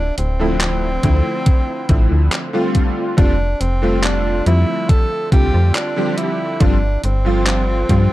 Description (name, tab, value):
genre	vaporwave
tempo	70 BPM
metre	4/4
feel	straight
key	unclear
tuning	A4 = 440 Hz
part	clear tenor saxophone	melody	0.0-8.1 s	C4 to A4	-23 LUFS	equal	tape echo
part	slap-like FM bass	bass	0.0-8.1 s	D1 to G2	-17 LUFS	equal	none
part	detuned 8-bit digital drum machine	drums	0.2-8.1 s	handclaps, hi-hat	-22 LUFS	equal	overdrive
part	bright electric grand piano	accompaniment	0.4-8.1 s	D3 to G4	-20 LUFS	equal	ensemble chorus
part	electronic kick drum	drums	1.0-8.1 s	none	-14 LUFS	equal	overdrive
room	digital ambience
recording	dark, warm production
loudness	-14 LUFS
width	side -16 dB against mid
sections	0.0-8.1 A section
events	none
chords	0.0 Dm9; 2.8 F69; 6.2 G7sus4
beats	0.61 1.47 2.32 | 3.18 4.04 4.89 5.75 | 6.61 7.46